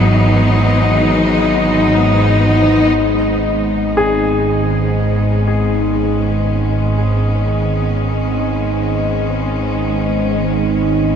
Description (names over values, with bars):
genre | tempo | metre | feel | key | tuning
dark ambient drone | free time | none | none | G# minor | A4 = 440 Hz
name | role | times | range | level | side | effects
rich studio cello section | sustained chords | 0.0-11.2 s | D#3 to D#4 | -17 LUFS | left 2 dB | none
organ-like drone | drone | 0.0-11.2 s | G#1 to G#2 | -15 LUFS | right 1 dB | ensemble chorus, built-in reverb, phaser
clear baby grand piano | arpeggios | 4.0-11.2 s | G#4 | -21 LUFS | left 2 dB | ping-pong delay
room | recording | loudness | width
moderate huge ambient reverb, RT60 8.6 s | none | -13 LUFS | side -8 dB against mid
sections
0.0-3.0 A section; 3.0-11.2 B section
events
fade-in on cello section 3.0-11.2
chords
0.0 Esus2; 3.0 G#m